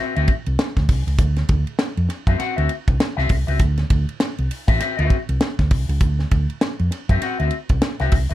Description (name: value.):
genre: funk.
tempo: 100 BPM.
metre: 4/4.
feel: swing 60% on 16ths.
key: D mixolydian.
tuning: A4 = 440 Hz.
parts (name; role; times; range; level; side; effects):
electric guitar with an envelope filter; accompaniment; 0.0-8.3 s; C4 to F#5; -23 LUFS; left 6 dB; none.
hollow-body short-scale fingered electric bass; bass; 0.2-8.3 s; A1 to F#2; -20 LUFS; equal; none.
tight funk drum kit; drums; 0.2-8.3 s; hi-hat, kick drum, ride cymbal, snare drum; -20 LUFS; equal; none.
room: little or no reverb.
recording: dark, warm production.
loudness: -18 LUFS.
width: side -14 dB against mid.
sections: 0.0-8.3 A section.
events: none.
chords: 0.0 D13.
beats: 0.58 | 1.19 1.79 2.39 3.00 | 3.60 4.20 4.80 5.41 | 6.01 6.61 7.21 7.82.